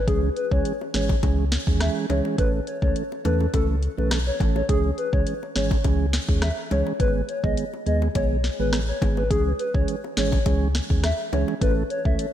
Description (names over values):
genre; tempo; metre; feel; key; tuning
dancehall; 104 BPM; 4/4; straight; C# minor; A4 = 440 Hz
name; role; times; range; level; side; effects
hollow clarinet-like synth lead; melody; 0.0-12.1 s; G#4 to E5; -28 LUFS; left 2 dB; chorus, tape echo
sub bass with octave; bass; 0.0-12.2 s; G#1 to E2; -24 LUFS; equal; none
mellow tonewheel organ; accompaniment; 0.1-12.3 s; D#3 to A4; -28 LUFS; right 6 dB; slow rotary speaker
afro-pop drum kit; drums; 0.1-12.3 s; hi-hat, kick drum, rim click, snare drum; -25 LUFS; equal; vintage 12-bit sampler grit
bongos; percussion; 0.8-11.6 s; none; -37 LUFS; left 7 dB; none
room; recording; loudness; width
light reverb; none; -21 LUFS; side -11 dB against mid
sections
0.0-12.3 A section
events
none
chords
0.1 C#m; 2.4 A; 4.7 C#m; 7.0 G#m; 9.3 C#m; 11.6 A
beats
| 0.08 0.65 1.23 1.81 | 2.38 2.96 3.54 4.11 | 4.69 5.27 5.84 6.42 | 7.00 7.58 8.15 8.73 | 9.31 9.88 10.46 11.04 | 11.61 12.19